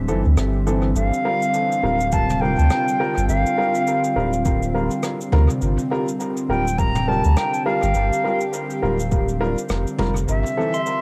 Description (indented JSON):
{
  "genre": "ambient dub",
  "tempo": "103 BPM",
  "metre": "4/4",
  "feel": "swing 59% on 16ths",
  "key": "G dorian",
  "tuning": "A4 = 440 Hz",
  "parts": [
    { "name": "silver concert flute", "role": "melody", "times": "0.0-11.0 s", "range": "E5 to Bb5", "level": "-26 LUFS", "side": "equal", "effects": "cassette tape, dub echo" },
    { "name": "airy breathy pad", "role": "sustained chords", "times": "0.0-11.0 s", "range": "D3 to G4", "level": "-28 LUFS", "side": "equal", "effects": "chorus, vintage 12-bit sampler grit, cassette tape" },
    { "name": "warm sub bass", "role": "bass", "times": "0.0-10.4 s", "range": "D1 to D2", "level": "-23 LUFS", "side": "equal", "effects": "none" },
    { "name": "dark upright piano", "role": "stabs", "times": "0.1-10.7 s", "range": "E3 to Bb4", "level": "-28 LUFS", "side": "equal", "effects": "cassette tape, dub echo" },
    { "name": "jazz brush drum kit", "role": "drums", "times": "0.1-11.0 s", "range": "cabasa, rim click, toms", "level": "-33 LUFS", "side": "equal", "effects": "cassette tape, dub echo" },
    { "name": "electronic kick drum", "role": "drums", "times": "2.1-9.3 s", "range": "none", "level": "-24 LUFS", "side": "equal", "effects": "cassette tape" },
    { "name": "pedal steel guitar", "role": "arpeggios", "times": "10.7-11.0 s", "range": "C6", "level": "-28 LUFS", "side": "equal", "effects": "cassette tape, dub echo" }
  ],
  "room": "light reverb, small room ambience",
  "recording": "home recording on cassette",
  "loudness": "-20 LUFS",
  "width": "mono",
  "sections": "1.0-11.0 A section",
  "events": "none",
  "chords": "0.0 Am; 1.0 Gm7; 10.3 Am"
}